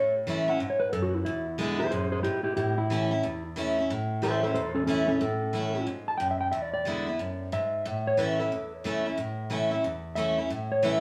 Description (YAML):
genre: rock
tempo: 182 BPM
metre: 4/4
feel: swing 65% on 8ths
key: A major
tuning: A4 = 438 Hz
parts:
  - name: mellow electric guitar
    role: melody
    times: 0.0-11.0 s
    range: C#4 to A5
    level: -31 LUFS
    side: equal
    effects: analog delay
  - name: picked steel-string acoustic guitar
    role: accompaniment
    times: 0.0-11.0 s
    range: E2 to E4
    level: -31 LUFS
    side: equal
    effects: none
room: moderate studio reverb, RT60 0.9 s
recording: band playing live in one room, studio ambience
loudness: -29 LUFS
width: mono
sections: 0.0-3.9 A section; 3.9-11.0 A section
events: clean electric guitar solo 0.0-11.0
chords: 0.0 A; 1.3 E7; 2.6 A; 6.5 E7; 7.9 A